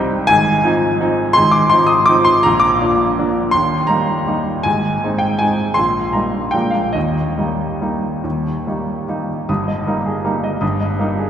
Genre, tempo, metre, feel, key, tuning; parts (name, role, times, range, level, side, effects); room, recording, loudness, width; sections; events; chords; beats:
classical, piano waltz; 135-175 BPM; 3/4; rubato; Eb major; A4 = 440 Hz
clear baby grand piano; solo; 0.0-11.3 s; Eb1 to Eb6; -14 LUFS; equal
wet church reverb, RT60 3.4 s; recorded in a church or concert hall; -14 LUFS; side -9 dB against mid
0.0-9.5 A section; 9.5-11.3 A section
0.3 Fm7/Ab; 2.5 Bb; 3.5 Eb; 4.6 Ab; 5.8 Eb/Bb; 6.5 Bb7; 6.9 Eb; 9.5 Eb/G
| 0.29 0.64 1.01 | 1.36 1.72 2.09 | 2.46 2.81 3.19 | 3.54 3.90 4.27 | 4.65 5.02 5.39 | 5.76 6.14 6.53 | 6.95 7.38 7.81 | 8.24 8.66 9.08 | 9.49 9.86 10.25 | 10.62 10.99